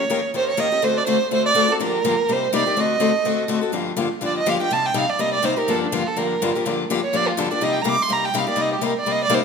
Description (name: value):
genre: jazz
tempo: 247 BPM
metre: 4/4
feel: swing 55% on 8ths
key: G minor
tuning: A4 = 441 Hz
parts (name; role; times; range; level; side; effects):
- warm violin; melody; 0.0-9.4 s; D4 to D6; -20 LUFS; right 4 dB; none
- picked steel-string acoustic guitar; accompaniment; 0.0-9.4 s; G2 to Bb4; -22 LUFS; left 6 dB; none
room: moderate recital hall reverb, RT60 1.6 s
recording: minimal, uncompressed stereo recording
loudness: -18 LUFS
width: side -6 dB against mid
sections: 0.0-3.7 A section; 3.7-9.4 B section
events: violin solo 3.7-9.4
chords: 0.0 Eb7; 0.8 D7; 1.8 Gm7; 2.3 Cm7; 2.8 D7b9; 3.7 Gm7; 4.7 Cm7; 5.7 Gm7; 7.6 Cm7